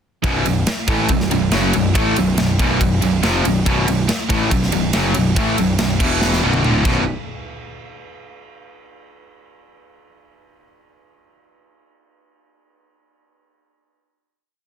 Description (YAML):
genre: heavy metal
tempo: 141 BPM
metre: 4/4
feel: straight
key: B minor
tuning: A4 = 440 Hz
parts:
  - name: distorted electric guitar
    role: riff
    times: 0.2-7.0 s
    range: B1 to A3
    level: -21 LUFS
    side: left 9 dB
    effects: overdrive
  - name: distorted electric guitar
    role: riff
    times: 0.2-7.0 s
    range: B1 to A3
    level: -23 LUFS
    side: right 1 dB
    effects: distortion
  - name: high-gain distorted guitar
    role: riff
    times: 0.2-7.0 s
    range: B1 to A3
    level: -22 LUFS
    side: right 9 dB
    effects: distortion
  - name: fuzz picked electric bass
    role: bass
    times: 0.2-7.0 s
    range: B0 to A1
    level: -22 LUFS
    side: equal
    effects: overdrive
  - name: tight metal drum kit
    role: drums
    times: 0.2-6.9 s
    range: crash cymbal, kick drum, ride cymbal, snare drum, toms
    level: -22 LUFS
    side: equal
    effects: none
room: light reverb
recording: dense, heavily limited modern master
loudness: -15 LUFS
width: side -8 dB against mid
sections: 0.2-7.1 riff; 7.1-8.8 final hit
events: drum fill 6.2-7.1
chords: 0.2 B5; 6.0 E5; 6.4 Bm; 6.8 B5; 7.1 N.C.